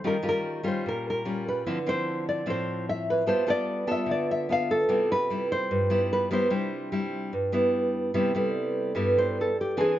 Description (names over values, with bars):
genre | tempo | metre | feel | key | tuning
bossa nova | 148 BPM | 4/4 | straight | C major | A4 = 440 Hz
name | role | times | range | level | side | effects
nylon-string guitar | melody | 0.0-10.0 s | G4 to F5 | -27 LUFS | equal | none
nylon-string guitar | accompaniment | 0.0-10.0 s | G2 to A4 | -27 LUFS | equal | none
vibraphone with soft mallets | accompaniment | 1.6-9.8 s | D4 to D5 | -36 LUFS | right 3 dB | none
room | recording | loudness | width
light reverb | nothing above 7.5 kHz | -24 LUFS | side -13 dB against mid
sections
0.0-8.1 A section; 8.1-10.0 B section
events
nylon-string guitar solo 8.1-10.0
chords
0.0 Eb9; 1.6 Dm9; 3.3 G9; 4.9 Cmaj7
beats
| 0.03 0.43 0.84 1.24 | 1.65 2.05 2.46 2.86 | 3.27 3.68 4.08 4.49 | 4.89 5.30 5.70 6.11 | 6.51 6.92 7.33 7.73 | 8.14 8.54 8.95 9.35 | 9.76